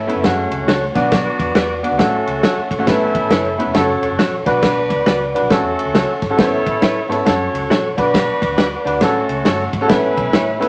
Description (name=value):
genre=uptempo 1960s-style soul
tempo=137 BPM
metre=4/4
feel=swing 64% on 8ths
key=unclear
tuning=A4 = 436 Hz
part: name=clear horn section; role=second line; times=0.0-10.6 s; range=F#3 to C#5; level=-27 LUFS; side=equal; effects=none
part: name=mellow tonewheel organ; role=sustained chords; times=0.0-10.7 s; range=A3 to D6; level=-26 LUFS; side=equal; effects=slow rotary speaker, chorus vibrato
part: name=vintage muted fingered electric bass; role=bass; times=0.0-10.6 s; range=E1 to A2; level=-30 LUFS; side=equal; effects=none
part: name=clear grand piano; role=accompaniment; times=0.1-10.7 s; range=A3 to C#5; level=-21 LUFS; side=equal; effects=none
part: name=warm soul drum kit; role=drums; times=0.1-10.7 s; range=kick drum, ride cymbal, snare drum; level=-21 LUFS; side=equal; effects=none
part: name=direct-recorded clean electric guitar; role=stabs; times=0.7-10.5 s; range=E4 to D5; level=-23 LUFS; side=equal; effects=none
room=wet studio reverb, RT60 0.9 s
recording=none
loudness=-16 LUFS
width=mono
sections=0.0-10.7 A section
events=none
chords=0.2 F#m; 0.9 Bm; 2.0 F#m; 2.9 Aadd9; 3.7 F#m; 4.4 Bm; 5.5 F#m/A; 6.4 Aadd9; 7.3 F#m; 7.9 Bm; 9.0 F#m; 9.9 Aadd9